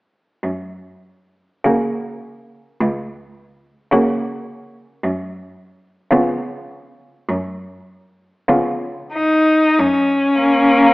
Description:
classical, lyrical piece for cello ensemble; 44-56 BPM; 4/4; rubato; F# major; A4 = 441 Hz
rich cello; bass; 0.4-10.8 s; C#2 to F#2; -23 LUFS; right 1 dB
clear cello; melody; 1.6-10.9 s; C#4 to F#4; -15 LUFS; left 1 dB
warm cello; accompaniment; 1.6-10.9 s; C#3 to A#3; -18 LUFS; equal
warm cello; second line; 1.7-9.5 s; A#3 to B3; -20 LUFS; right 2 dB
moderate scoring stage reverb, RT60 1.5 s; AM radio sound; -16 LUFS; side -22 dB against mid
0.4-9.8 A section; 9.8-10.9 B section
0.4 F#; 5.0 C#7/F#; 9.8 F#

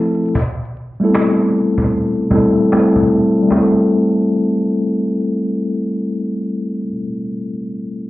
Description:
lo-fi hip hop; 76 BPM; 4/4; swing 61% on 16ths; A minor; A4 = 440 Hz
mellow tine electric piano; accompaniment; 0.0-8.1 s; F3 to A4; -14 LUFS; left 1 dB; slow stereo tremolo
cajon; drums; 0.4-3.7 s; -22 LUFS; equal
moderate small room reverb, RT60 0.5 s; dark, warm production, vinyl crackle, low-pass filter; -14 LUFS; side -17 dB against mid
0.0-3.5 A section; 3.5-6.7 B section
filter sweep 0.0-3.5
0.3 Am7

